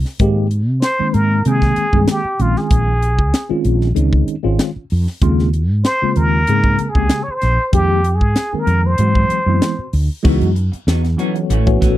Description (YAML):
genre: electric jazz fusion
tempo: 96 BPM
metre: 4/4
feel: straight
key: unclear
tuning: A4 = 440 Hz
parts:
  - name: woody fretless electric bass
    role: bass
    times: 0.0-12.0 s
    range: Ab1 to C3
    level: -16 LUFS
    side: equal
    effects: none
  - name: tight funk drum kit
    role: drums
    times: 0.1-12.0 s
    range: crash cymbal, hi-hat, kick drum, snare drum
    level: -17 LUFS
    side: equal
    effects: none
  - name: tine electric piano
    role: accompaniment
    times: 0.2-12.0 s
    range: Db3 to G5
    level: -19 LUFS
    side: left 1 dB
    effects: medium stereo tremolo, phaser
  - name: trumpet with plunger mute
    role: melody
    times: 0.8-9.9 s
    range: F4 to Db5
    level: -19 LUFS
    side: equal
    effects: slapback echo
  - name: semi-hollow electric guitar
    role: stabs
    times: 10.2-12.0 s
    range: E3 to F#4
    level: -24 LUFS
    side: right 2 dB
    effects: wide subtle chorus
room: little or no reverb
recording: dry, close 1970s-style studio recording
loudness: -13 LUFS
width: side -14 dB against mid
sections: 0.0-10.2 A section; 10.2-12.0 B section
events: none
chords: 0.2 Abmaj9; 2.4 Bbm11; 5.2 Eb13sus4; 7.7 Fm11; 9.0 Ab7alt; 10.2 C#m11